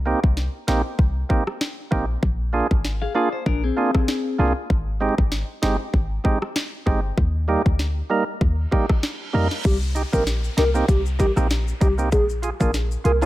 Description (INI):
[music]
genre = dancehall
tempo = 97 BPM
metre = 4/4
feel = swing 56% on 16ths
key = C minor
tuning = A4 = 440 Hz
[part]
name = short 808-style bass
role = bass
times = 0.0-13.3 s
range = G1 to F2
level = -22 LUFS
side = equal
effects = none
[part]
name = percussive tonewheel organ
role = accompaniment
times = 0.1-13.3 s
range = G3 to Bb4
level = -25 LUFS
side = right 3 dB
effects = overdrive, sidechain pumping
[part]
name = island pop drum kit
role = drums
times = 0.2-13.2 s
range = crash cymbal, hi-hat, kick drum, rim click, snare drum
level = -22 LUFS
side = equal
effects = overdrive
[part]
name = clean electric guitar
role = arpeggios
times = 3.0-4.5 s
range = C4 to F5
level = -25 LUFS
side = left 5 dB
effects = none
[part]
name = reverse cymbal and downlifter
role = sound effects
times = 8.8-13.3 s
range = none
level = -37 LUFS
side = right 2 dB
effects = none
[part]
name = hollow clarinet-like synth lead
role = melody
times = 9.6-13.2 s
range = G4 to Bb4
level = -24 LUFS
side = equal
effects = chorus, digital delay
[part]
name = maracas and timbales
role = percussion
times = 9.6-13.3 s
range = none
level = -34 LUFS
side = left 4 dB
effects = none
[sound]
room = light reverb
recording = none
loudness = -19 LUFS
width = side -16 dB against mid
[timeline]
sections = 0.0-9.6 A section; 9.6-13.3 B section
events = reverse cymbal 8.8-9.6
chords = 0.0 Cm7; 2.2 Bb7; 4.7 Abmaj7; 7.2 Eb; 9.6 Cm7; 12.1 Bb7